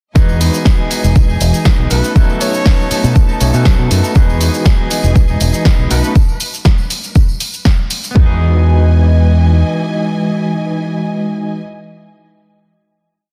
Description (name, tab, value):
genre	filtered disco house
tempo	120 BPM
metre	4/4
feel	straight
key	E major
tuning	A4 = 440 Hz
part	overdriven tine electric piano	accompaniment	0.1-11.6 s	E3 to C#5	-22 LUFS	equal	medium tremolo, phaser, sidechain pumping
part	clear symphonic string section	sustained chords	0.2-11.6 s	E3 to A5	-27 LUFS	equal	sidechain pumping
part	clean electric guitar	riff	0.2-11.8 s	F#3 to A4	-27 LUFS	equal	sidechain pumping
part	fingered electric bass	bass	0.2-9.6 s	E1 to B2	-14 LUFS	equal	sidechain pumping
part	electronic kick drum	drums	0.2-8.3 s	none	-12 LUFS	equal	none
part	punchy analog drum machine	drums	0.2-8.1 s	hi-hat, shaker, snare drum	-22 LUFS	equal	sidechain pumping on perc, sidechain pumping on hats
part	tambourine	percussion	0.2-8.1 s	none	-32 LUFS	equal	sidechain pumping on perc
part	bright horn section	melody	1.9-6.1 s	B4 to C#5	-26 LUFS	equal	sidechain pumping, dub echo
room	little or no reverb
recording	dense, heavily limited modern master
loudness	-13 LUFS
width	mono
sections	0.2-8.2 drop; 8.2-12.2 final chord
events	drop 0.2-8.2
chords	0.2 Emaj7; 1.9 B7; 4.2 Emaj7; 5.9 B7; 8.2 Emaj7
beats	| 0.16 0.66 1.16 1.66 | 2.16 2.66 3.16 3.66 | 4.16 4.66 5.16 5.66 | 6.16 6.66 7.16 7.66 | 8.16 8.66 9.16 9.66 | 10.16 10.66 11.16 11.66